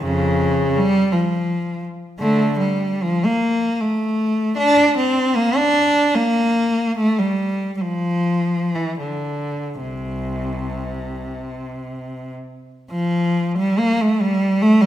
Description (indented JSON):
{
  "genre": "classical, free, expressive piece for unaccompanied cello",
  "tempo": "45-84 BPM",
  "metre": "3/4",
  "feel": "rubato",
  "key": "unclear",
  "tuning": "A4 = 436 Hz",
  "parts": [
    { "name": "rich cello", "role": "solo", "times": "0.0-14.9 s", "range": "C2 to D4", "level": "-17 LUFS", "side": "equal", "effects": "none" }
  ],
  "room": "moderate recital hall reverb, RT60 1.5 s",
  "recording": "none",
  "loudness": "-17 LUFS",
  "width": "side -12 dB against mid",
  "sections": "0.0-12.9 A section; 12.9-14.9 B section",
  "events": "none",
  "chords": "none",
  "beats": "| 0.03 0.77 1.49 | 2.21 3.03 3.80 | 4.55 5.34 6.13 | 6.97 7.85 8.75 | 9.78 10.83 11.80 | 12.91 13.78 14.60"
}